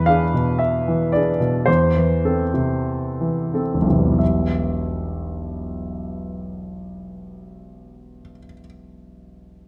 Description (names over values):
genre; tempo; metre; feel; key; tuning
classical, romantic character piece for solo piano; 42-57 BPM; 2/4; rubato; E minor; A4 = 440 Hz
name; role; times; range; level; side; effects
warm grand piano; solo; 0.0-9.7 s; E1 to F5; -21 LUFS; equal; none
room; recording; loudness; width
moderate recital hall reverb, RT60 1.5 s; dark, warm production; -21 LUFS; mono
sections
0.0-4.2 A section; 4.2-9.1 B section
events
slowing down 0.0-4.2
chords
0.0 E7; 1.7 Am/E; 4.2 Em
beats
0.61 | 1.67 2.86 | 4.21 5.42 | 6.62 7.83